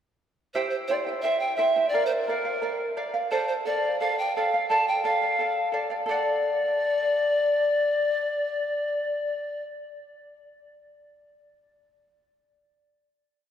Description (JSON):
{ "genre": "andean folk, Andean ensemble", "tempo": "87 BPM", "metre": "2/4", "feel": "straight", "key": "D minor", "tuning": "A4 = 440 Hz", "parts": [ { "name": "breathy pan flute", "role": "melody", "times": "0.5-9.6 s", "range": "Bb4 to A5", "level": "-24 LUFS", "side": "left 1 dB", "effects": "none" }, { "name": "charango", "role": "accompaniment", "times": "0.5-10.4 s", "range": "E4 to G5", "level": "-29 LUFS", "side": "right 3 dB", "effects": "none" } ], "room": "wet cathedral reverb, RT60 4.6 s", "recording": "recorded in a church or concert hall", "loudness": "-23 LUFS", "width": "side -9 dB against mid", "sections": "0.5-6.1 A section; 6.1-8.8 final chord", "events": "none", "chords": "0.5 C; 1.9 Bb; 3.3 Dm; 6.1 D" }